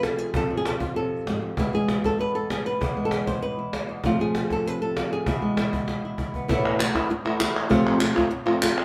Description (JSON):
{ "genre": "flamenco", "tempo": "195 BPM", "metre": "4/4", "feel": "straight", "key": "unclear", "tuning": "A4 = 439 Hz", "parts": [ { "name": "flamenco guitar", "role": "melody", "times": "0.0-8.8 s", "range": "E2 to C5", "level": "-26 LUFS", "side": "equal", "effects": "none" }, { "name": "cajon", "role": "percussion", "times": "0.0-8.8 s", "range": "none", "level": "-32 LUFS", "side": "equal", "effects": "none" }, { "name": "palmas hand claps", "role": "percussion", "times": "6.7-8.8 s", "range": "none", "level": "-29 LUFS", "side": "equal", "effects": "none" } ], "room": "moderate studio reverb, RT60 0.8 s", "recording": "band playing live in one room", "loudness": "-25 LUFS", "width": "mono", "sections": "0.0-6.5 A section; 6.5-8.8 B section", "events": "drum fill 5.9-6.5", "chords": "0.0 F; 1.6 E; 4.0 F; 5.3 E; 6.5 Esus4; 7.7 F" }